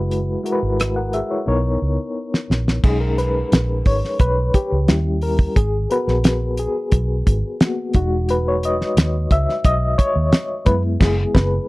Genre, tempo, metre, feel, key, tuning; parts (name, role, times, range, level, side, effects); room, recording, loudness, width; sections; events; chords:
lush 1970s-style soul; 88 BPM; 4/4; straight; B major; A4 = 440 Hz
reed electric piano; accompaniment; 0.0-11.7 s; G3 to F#5; -21 LUFS; left 1 dB; medium tremolo
vintage muted fingered electric bass; bass; 0.0-11.6 s; E1 to F#2; -20 LUFS; equal
cloth-damped thuddy drum kit; drums; 0.1-11.5 s; crash cymbal, hi-hat, kick drum, rim click, snare drum; -16 LUFS; equal
little or no reverb; dry, close 1970s-style studio recording; -16 LUFS; side -21 dB against mid
0.0-2.8 A section; 2.8-11.7 B section
drum fill 1.5-2.8; reed electric piano solo 2.8-11.7; band accent 11.0-11.7
0.0 F#9sus4; 1.5 Bmaj9; 2.8 B6; 4.9 D#7b9; 5.6 G#m7; 7.9 Emaj7; 10.7 F#9sus4